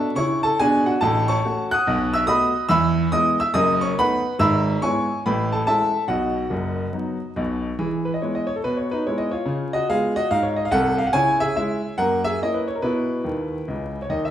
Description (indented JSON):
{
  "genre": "jazz, stride piano",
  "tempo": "142 BPM",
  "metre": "4/4",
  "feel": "swing 64% on 8ths",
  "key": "E major",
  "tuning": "A4 = 440 Hz",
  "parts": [
    { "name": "warm baby grand piano", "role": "solo", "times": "0.0-14.3 s", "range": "F#1 to F#6", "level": "-19 LUFS", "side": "equal", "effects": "none" }
  ],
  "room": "wet large studio reverb, RT60 1.2 s",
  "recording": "band playing live in one room, vinyl crackle",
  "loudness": "-19 LUFS",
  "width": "side -11 dB against mid",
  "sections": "0.0-7.8 A section; 7.8-14.3 B section",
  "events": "grand piano fill 13.2-14.3",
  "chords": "0.0 A; 1.0 F#m/A; 1.9 B7; 2.7 E; 3.5 B7/F#; 4.4 E/G#; 5.2 Amaj7; 6.1 B; 7.8 E; 9.4 C#7; 11.1 C#m; 12.0 F#7; 12.8 E5/B; 13.7 C#madd9",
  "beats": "0.16 0.59 | 1.01 1.43 1.86 2.28 | 2.70 3.12 3.55 3.97 | 4.39 4.81 5.23 5.66 | 6.08 6.50 6.92 7.34 | 7.76 8.19 8.61 9.03 | 9.45 9.87 10.29 10.71 | 11.14 11.56 11.98 12.40 | 12.83 13.25 13.67 14.09"
}